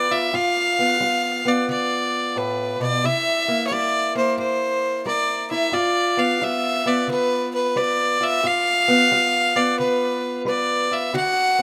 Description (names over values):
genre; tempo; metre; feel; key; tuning
acoustic country blues, solo or duo; 89 BPM; 4/4; swing 66% on 8ths; G mixolydian; A4 = 442 Hz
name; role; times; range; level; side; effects
bright fiddle; melody; 0.0-11.6 s; B4 to F#5; -22 LUFS; equal; none
fingerpicked steel-string acoustic guitar; accompaniment; 0.0-11.6 s; G2 to B4; -26 LUFS; equal; none
room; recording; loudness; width
light reverb, small room ambience; rough home demo mix; -21 LUFS; mono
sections
0.3-11.6 A section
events
none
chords
0.3 G7; 3.0 C7; 5.7 G7